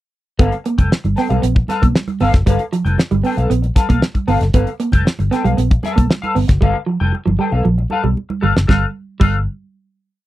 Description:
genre	funk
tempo	116 BPM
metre	4/4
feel	straight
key	G mixolydian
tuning	A4 = 445 Hz
part	clean electric guitar	accompaniment	0.4-9.4 s	A4 to G5	-21 LUFS	left 4 dB	wah, analog chorus
part	electric guitar through a small old amp	riff	0.4-9.4 s	F3 to B3	-20 LUFS	right 5 dB	none
part	vintage muted fingered electric bass	bass	0.4-9.5 s	F1 to B1	-17 LUFS	equal	none
part	damped 70s drum kit	drums	0.4-9.3 s	crash cymbal, hi-hat, kick drum, snare drum	-14 LUFS	equal	none
part	congas	percussion	0.4-9.5 s	none	-26 LUFS	right 5 dB	none
room	little or no reverb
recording	dry, close 1970s-style studio recording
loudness	-14 LUFS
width	side -15 dB against mid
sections	0.4-8.7 A section; 8.7-10.3 final chord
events	drum fill 6.6-8.7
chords	0.4 G9

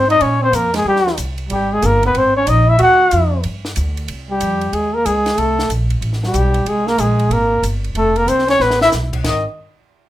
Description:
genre	jazz, small-group swing and bop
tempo	186 BPM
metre	4/4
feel	swing 64% on 8ths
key	Ab major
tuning	A4 = 440 Hz
part	warm flugelhorn	melody	0.0-9.4 s	G4 to F#5	-15 LUFS	left 2 dB	none
part	growling trombone	second line	0.0-9.4 s	Eb3 to F#4	-20 LUFS	right 3 dB	none
part	upright bass	bass	0.0-9.4 s	F1 to Bb2	-19 LUFS	equal	none
part	compact cocktail drum kit	drums	0.1-9.3 s	crash cymbal, hi-hat, kick drum, ride cymbal, snare drum	-28 LUFS	equal	none
room	moderate club reverb, RT60 0.6 s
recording	minimal, uncompressed stereo recording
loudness	-13 LUFS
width	side -14 dB against mid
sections	0.0-4.1 A section; 4.1-9.2 B section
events	drum fill 8.6-8.9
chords	0.2 Bb5; 0.9 Eb6; 1.5 Absus2; 2.8 D; 3.4 G5; 4.1 C5; 4.7 Eb7sus4; 5.4 Am; 6.0 Gadd9/A; 6.7 Abadd9; 7.3 Gm; 8.0 F5; 8.6 Asus2; 9.2 Ab5

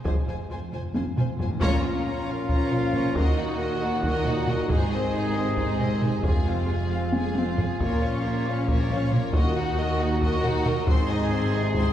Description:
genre	cinematic, epic orchestral film score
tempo	272 BPM (eighths)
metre	7/8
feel	straight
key	Bb minor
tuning	A4 = 440 Hz
part	warm symphonic violin section	melody	0.0-11.9 s	C5 to C6	-36 LUFS	left 2 dB	none
part	dark trombone section	sustained chords	0.0-11.9 s	Bb2 to Ab3	-34 LUFS	right 1 dB	none
part	warm symphonic cello section	bass	0.0-11.9 s	Eb2 to Bb2	-31 LUFS	right 2 dB	none
part	warm studio violin section	second line	0.1-11.9 s	F4 to Eb5	-34 LUFS	left 2 dB	none
part	warm symphonic viola section	accompaniment	0.1-11.9 s	Ab3 to Gb4	-34 LUFS	right 1 dB	none
part	mellow French horn section	sustained chords	0.1-11.9 s	Ab3 to Ab4	-33 LUFS	left 2 dB	none
part	warm studio double bass section	bass	0.1-11.9 s	F1 to Eb2	-32 LUFS	right 1 dB	none
part	taiko ensemble	drums	0.1-11.9 s	none	-26 LUFS	equal	none
part	timpani	percussion	0.1-2.2, 6.2-6.9 s	F2 to Bb2	-35 LUFS	left 2 dB	none
part	dark trumpet section	stabs	1.6-11.9 s	F4 to Ab4	-31 LUFS	left 1 dB	none
room	wet scoring stage reverb, RT60 2.0 s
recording	heard from further back in the room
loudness	-22 LUFS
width	side -11 dB against mid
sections	0.0-1.6 A section; 1.6-11.9 A section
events	timpani fill 0.1-1.6; drum fill 1.0-1.6, 7.1-7.8; band accent 1.6-2.1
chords	0.1 Fm; 1.6 Bbm; 3.2 Ebm; 4.7 Ab; 6.2 Fm; 7.8 Bbm; 9.3 Ebm; 10.9 Ab

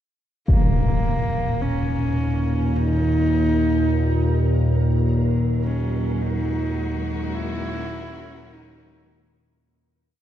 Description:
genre	dark ambient drone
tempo	52 BPM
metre	4/4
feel	straight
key	Eb phrygian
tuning	A4 = 445 Hz
part	rich horsehead fiddle	melody	0.5-9.4 s	Bb3 to Fb4	-26 LUFS	right 2 dB	diffuse ambient delay
part	analog drone	drone	1.2-9.8 s	Eb2 to Bb2	-21 LUFS	equal	chorus
part	impact	percussion	0.5-0.7 s	none	-22 LUFS	equal	low-pass filter on sfx
part	flickering grainy texture	texture	1.7-9.7 s	Bb4	-39 LUFS	right 2 dB	built-in reverb
part	bright studio cello section	sustained chords	5.1-9.7 s	Gb3 to Bb4	-34 LUFS	left 2 dB	none
room	wet cathedral reverb, RT60 5.5 s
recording	in a vast, echoing space, cassette tape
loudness	-19 LUFS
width	side -11 dB against mid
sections	0.5-9.7 A section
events	fade-in on synth texture 0.5-9.7; fade-out 5.1-9.7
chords	0.5 Ebm

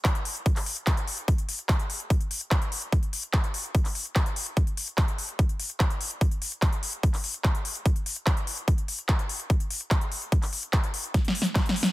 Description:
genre	trance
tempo	146 BPM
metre	4/4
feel	straight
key	none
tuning	none
part	big-room dance drum kit	drums	0.0-11.9 s	handclaps, hi-hat, snare drum	-30 LUFS	left 1 dB	overdrive
part	electronic kick drum	drums	0.0-11.6 s	none	-24 LUFS	equal	overdrive
room	little or no reverb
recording	dense, heavily limited modern master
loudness	-24 LUFS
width	side -18 dB against mid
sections	0.0-11.9 A section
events	drum fill 11.1-11.9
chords	none

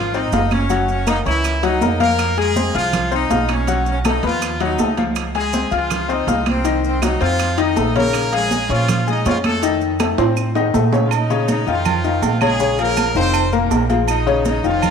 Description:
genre	latin, salsa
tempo	161 BPM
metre	4/4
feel	straight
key	Bb minor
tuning	A4 = 440 Hz
part	brilliant horn section	melody	0.0-14.9 s	Fb3 to Eb5	-22 LUFS	equal	none
part	bright baby grand piano	accompaniment	0.0-14.9 s	Bb2 to F6	-20 LUFS	left 7 dB	none
part	upright bass	bass	0.0-14.9 s	F1 to Bb2	-22 LUFS	right 2 dB	none
part	congas	percussion	0.1-14.9 s	none	-24 LUFS	right 1 dB	none
part	maracas	percussion	0.1-14.9 s	none	-35 LUFS	right 13 dB	none
part	timbales and agogo bells	percussion	0.3-14.9 s	none	-25 LUFS	right 13 dB	none
part	claves	percussion	0.5-14.9 s	none	-31 LUFS	right 11 dB	none
room	moderate echo chamber reverb, RT60 1.9 s, studio reverb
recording	1960s-style stereo with parts hard left and right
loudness	-15 LUFS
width	side -6 dB against mid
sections	0.0-11.1 A section; 11.1-14.9 B section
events	drum fill 10.2-11.1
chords	0.0 Dbmaj9; 0.7 Gb7; 2.2 Fm7; 3.7 B9; 5.2 Dbmaj9; 6.7 Cdim; 7.4 F7; 8.1 Bbm7; 9.6 F7; 11.1 Bbm; 11.9 F7sus4; 12.6 Bbm7; 13.3 F7sus4; 14.1 Bbm7

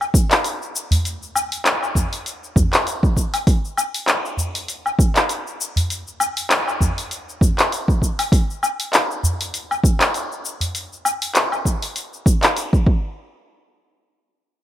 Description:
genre	downtempo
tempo	99 BPM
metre	4/4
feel	swing 55% on 16ths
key	none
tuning	none
part	deep house drum kit	drums	0.0-12.8 s	handclaps, hi-hat, shaker, woodblock	-20 LUFS	left 1 dB	none
part	electronic kick drum	drums	0.1-13.0 s	none	-16 LUFS	equal	none
part	udu	percussion	0.9-10.7 s	none	-21 LUFS	right 1 dB	none
room	light reverb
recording	bright 1980s-style digital production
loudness	-18 LUFS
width	side -12 dB against mid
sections	0.0-13.2 A section; 13.2-14.6 B section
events	none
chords	none

